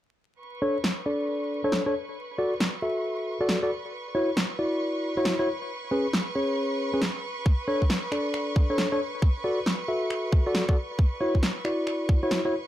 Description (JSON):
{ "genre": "UK garage, two-step garage", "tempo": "136 BPM", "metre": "4/4", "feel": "swing 64% on 16ths", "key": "B dorian", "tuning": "A4 = 436 Hz", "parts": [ { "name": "rich chamber violin section", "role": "sustained chords", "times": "0.4-12.7 s", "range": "B4 to C#6", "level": "-36 LUFS", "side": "right 1 dB", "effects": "vintage 12-bit sampler grit, sidechain pumping, low-pass filter" }, { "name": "mellow tine electric piano", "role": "stabs", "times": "0.6-12.5 s", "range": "C#4 to E5", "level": "-27 LUFS", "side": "left 1 dB", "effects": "low-pass filter, ping-pong delay" }, { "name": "electronic snare drum and finger snaps", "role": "drums", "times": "0.8-12.4 s", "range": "none", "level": "-27 LUFS", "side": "equal", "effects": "none" }, { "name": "electronic kick drum", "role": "drums", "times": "7.5-12.2 s", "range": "none", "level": "-21 LUFS", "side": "equal", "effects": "none" } ], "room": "moderate studio reverb, RT60 0.5 s", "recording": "vinyl crackle", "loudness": "-24 LUFS", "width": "side -13 dB against mid", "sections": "0.4-12.7 A section", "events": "filter sweep on tine electric piano 0.4-12.7", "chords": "0.4 Bm9; 1.9 E7sus4; 3.7 Dmaj7; 5.7 G#madd11/C#; 7.5 Bm9; 9.0 E7sus4; 10.8 Dmaj7", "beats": "| 0.40 0.84 1.28 1.72 | 2.16 2.60 3.05 3.49 | 3.93 4.37 4.81 5.25 | 5.69 6.13 6.58 7.02 | 7.46 7.90 8.34 8.78 | 9.22 9.66 10.11 10.55 | 10.99 11.43 11.87 12.31" }